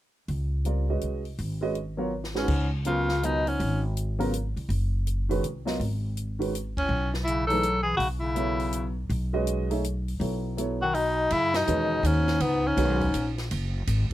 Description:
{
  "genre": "modal jazz",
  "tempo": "163 BPM",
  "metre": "3/4",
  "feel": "swing 64% on 8ths",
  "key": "unclear",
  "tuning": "A4 = 443 Hz",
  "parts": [
    { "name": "upright bass", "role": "bass", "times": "0.3-14.1 s", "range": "Gb1 to F#2", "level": "-28 LUFS", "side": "equal", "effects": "none" },
    { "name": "compact cocktail drum kit", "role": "drums", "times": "0.3-14.1 s", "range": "crash cymbal, hi-hat, kick drum, ride cymbal, snare drum", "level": "-37 LUFS", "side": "equal", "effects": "none" },
    { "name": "warm baby grand piano", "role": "accompaniment", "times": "0.6-13.0 s", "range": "Db3 to Fb5", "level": "-30 LUFS", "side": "right 2 dB", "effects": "none" },
    { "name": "warm tenor saxophone", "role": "melody", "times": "2.4-3.8, 6.8-13.4 s", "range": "B3 to A4", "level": "-26 LUFS", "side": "equal", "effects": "none" },
    { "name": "clear bass clarinet", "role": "second line", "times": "2.4-3.8, 6.8-13.4 s", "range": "G#2 to Gb3", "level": "-31 LUFS", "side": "left 4 dB", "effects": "none" }
  ],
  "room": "little or no reverb",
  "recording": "close, detailed microphones",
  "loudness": "-24 LUFS",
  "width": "side -14 dB against mid",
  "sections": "0.3-2.5 A section; 2.5-11.3 B section; 11.3-14.1 C section",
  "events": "drum fill 2.1-2.5; band accent 6.7, 11.5",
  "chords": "0.3 Db9sus4; 6.9 Cb9sus4; 11.3 F#13sus4"
}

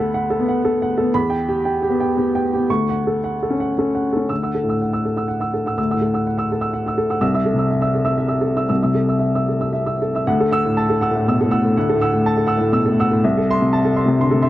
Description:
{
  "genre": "neoclassical minimalist piano",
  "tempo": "109-127 BPM",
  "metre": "3/4",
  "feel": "rubato",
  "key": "D major",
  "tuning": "A4 = 440 Hz",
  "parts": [
    { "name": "warm upright piano", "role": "solo", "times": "0.0-14.5 s", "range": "C2 to E6", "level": "-16 LUFS", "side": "equal", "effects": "none" }
  ],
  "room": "light reverb",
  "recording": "dry, close 1970s-style studio recording",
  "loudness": "-16 LUFS",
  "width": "side -14 dB against mid",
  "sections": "0.0-4.3 A section; 4.3-10.3 B section; 10.3-14.5 C section",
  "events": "none",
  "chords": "0.0 Bm7/D; 1.1 Em; 2.7 Dmaj7; 4.3 Dadd9; 7.2 Am/C; 10.3 Dadd9; 13.2 Am/C"
}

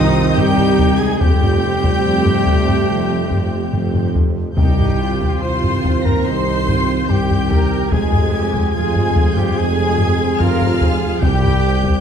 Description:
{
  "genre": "cinematic, epic orchestral film score",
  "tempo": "72 BPM",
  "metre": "4/4",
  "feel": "straight",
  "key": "unclear",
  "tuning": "A4 = 440 Hz",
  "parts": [
    { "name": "clear studio violin section", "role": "melody", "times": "0.0-12.0 s", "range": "Eb6 to C7", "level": "-28 LUFS", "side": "left 3 dB", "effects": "none" },
    { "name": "clear symphonic violin section", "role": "second line", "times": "0.0-12.0 s", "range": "Eb5 to C6", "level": "-29 LUFS", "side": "left 1 dB", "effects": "none" },
    { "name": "hollow concert flute", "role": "second line", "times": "0.0-12.0 s", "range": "Eb5 to C6", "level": "-30 LUFS", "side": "left 3 dB", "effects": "none" },
    { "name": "rich symphonic viola section", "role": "accompaniment", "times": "0.0-12.0 s", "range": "Ab3 to C5", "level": "-27 LUFS", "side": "right 2 dB", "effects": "none" },
    { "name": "dark trombone section", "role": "sustained chords", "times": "0.0-12.0 s", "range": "C3 to C4", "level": "-23 LUFS", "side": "right 2 dB", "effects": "none" },
    { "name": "mellow French horn section", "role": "sustained chords", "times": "0.0-12.0 s", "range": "Eb3 to C4", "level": "-23 LUFS", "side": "left 5 dB", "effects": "none" },
    { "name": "warm trumpet", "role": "stabs", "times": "0.0-12.0 s", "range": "Eb4 to C5", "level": "-25 LUFS", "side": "right 1 dB", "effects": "none" },
    { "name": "clear symphonic double bass section", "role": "bass", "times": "0.0-11.9 s", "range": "C2 to F2", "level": "-23 LUFS", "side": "right 2 dB", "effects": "none" },
    { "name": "mellow tuba", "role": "bass", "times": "0.0-12.0 s", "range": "F1 to C2", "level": "-24 LUFS", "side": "right 2 dB", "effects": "none" },
    { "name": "rich symphonic cello section", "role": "bass", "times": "0.0-12.0 s", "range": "C4 to Bb4", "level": "-27 LUFS", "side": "right 3 dB", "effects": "none" },
    { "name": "taiko ensemble", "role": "drums", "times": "0.4-12.0 s", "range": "none", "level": "-18 LUFS", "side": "left 1 dB", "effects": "none" },
    { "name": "timpani", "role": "percussion", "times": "4.6-5.8, 11.2-12.0 s", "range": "C3", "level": "-24 LUFS", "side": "equal", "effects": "none" }
  ],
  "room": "wet scoring stage reverb, RT60 1.9 s",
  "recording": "dark, warm production",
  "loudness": "-14 LUFS",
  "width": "side -8 dB against mid",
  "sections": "0.0-12.0 A section",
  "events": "none",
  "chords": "0.0 Cm; 1.2 Fadd9; 4.6 Cm; 7.9 Fmadd9; 11.2 C5"
}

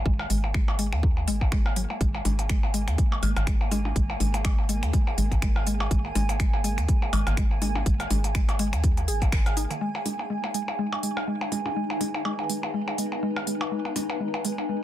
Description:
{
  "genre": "minimal techno",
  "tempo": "123 BPM",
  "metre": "4/4",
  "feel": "swing 56% on 16ths",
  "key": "G# minor",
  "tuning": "A4 = 435 Hz",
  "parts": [
    { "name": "hollow knocking FM bass", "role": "bass", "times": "0.0-9.7 s", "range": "G#1 to D#2", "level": "-27 LUFS", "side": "equal", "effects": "sidechain pumping" },
    { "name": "granular cloud pad", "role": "texture", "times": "0.0-14.8 s", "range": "D#4 to G#5", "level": "-34 LUFS", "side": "equal", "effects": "built-in reverb, sidechain pumping" },
    { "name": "swarming drone", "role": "texture", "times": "0.0-14.8 s", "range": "A#3 to D#4", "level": "-41 LUFS", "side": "equal", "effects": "built-in reverb, sidechain pumping" },
    { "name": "mallet-like synth pluck", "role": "riff", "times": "0.1-14.7 s", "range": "D#3 to G#4", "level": "-32 LUFS", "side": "left 1 dB", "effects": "chorus, sidechain pumping, tape echo" },
    { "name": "electronic kick drum", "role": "drums", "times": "0.1-9.4 s", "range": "none", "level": "-24 LUFS", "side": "equal", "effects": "none" },
    { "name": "percussion blips", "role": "percussion", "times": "0.2-14.7 s", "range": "none", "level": "-32 LUFS", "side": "equal", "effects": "tape echo" },
    { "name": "house drum kit", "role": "drums", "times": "0.3-14.6 s", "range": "finger snaps, hi-hat", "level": "-34 LUFS", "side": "equal", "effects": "soft clipping on snare" }
  ],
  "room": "moderate small room reverb, RT60 0.6 s",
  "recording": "dense, heavily limited modern master",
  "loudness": "-23 LUFS",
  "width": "side -12 dB against mid",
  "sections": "0.0-9.8 A section; 9.8-14.8 B section",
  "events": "fade-in on ambient pad 0.0-9.8; band accent 9.3",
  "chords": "0.0 G#5; 9.8 G#m"
}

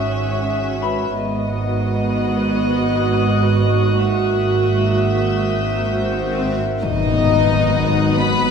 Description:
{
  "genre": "cinematic",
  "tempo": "85 BPM",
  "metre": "4/4",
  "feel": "straight",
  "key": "G# minor",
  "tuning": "A4 = 439 Hz",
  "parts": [
    { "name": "warm studio violin section", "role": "melody", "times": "0.0-8.5 s", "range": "D#5 to B5", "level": "-24 LUFS", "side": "left 6 dB", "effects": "none" },
    { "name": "dark studio viola section", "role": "accompaniment", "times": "0.0-8.5 s", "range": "A#3 to F#4", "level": "-22 LUFS", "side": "right 4 dB", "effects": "none" },
    { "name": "glass harmonica", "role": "sustained chords", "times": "0.0-8.5 s", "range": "A#4 to F#5", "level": "-27 LUFS", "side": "left 2 dB", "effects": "none" },
    { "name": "dark studio double bass section", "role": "bass", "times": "0.0-8.5 s", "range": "G#1", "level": "-23 LUFS", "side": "right 3 dB", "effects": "none" },
    { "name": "warm studio cello section", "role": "bass", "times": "0.0-8.5 s", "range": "G#2", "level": "-23 LUFS", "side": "right 2 dB", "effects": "none" },
    { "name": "concert harp", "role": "texture", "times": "0.0-8.5 s", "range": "G#4 to D#6", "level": "-31 LUFS", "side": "left 6 dB", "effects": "none" },
    { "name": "warm studio violin section", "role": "texture", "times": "0.0-8.5 s", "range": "D#6 to F#6", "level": "-29 LUFS", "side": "left 6 dB", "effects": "none" },
    { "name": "swell and impact", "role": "sound effects", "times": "5.6-8.5 s", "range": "none", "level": "-27 LUFS", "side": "left 2 dB", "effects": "none" },
    { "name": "warm studio violin section", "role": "second line", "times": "6.8-8.5 s", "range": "D#4 to B4", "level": "-23 LUFS", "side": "left 3 dB", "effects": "none" },
    { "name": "dark trombone section", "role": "sustained chords", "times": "6.8-8.5 s", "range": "F#3 to B3", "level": "-28 LUFS", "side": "right 3 dB", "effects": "none" },
    { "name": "mellow French horn section", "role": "sustained chords", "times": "6.8-8.5 s", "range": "D#3 to B3", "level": "-25 LUFS", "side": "left 8 dB", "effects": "none" },
    { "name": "marimba with soft mallets", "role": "riff", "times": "6.8-8.5 s", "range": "G#2", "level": "-22 LUFS", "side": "left 8 dB", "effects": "none" }
  ],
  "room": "wet scoring stage reverb, RT60 1.9 s",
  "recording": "none",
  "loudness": "-16 LUFS",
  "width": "side -6 dB against mid",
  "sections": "0.0-6.8 A section; 6.8-8.5 A section",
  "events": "swell 5.6-6.8; impact 6.8-8.5",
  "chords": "0.0 F#7/G#; 1.2 G#m7; 4.0 F#7/G#; 6.8 G#m7"
}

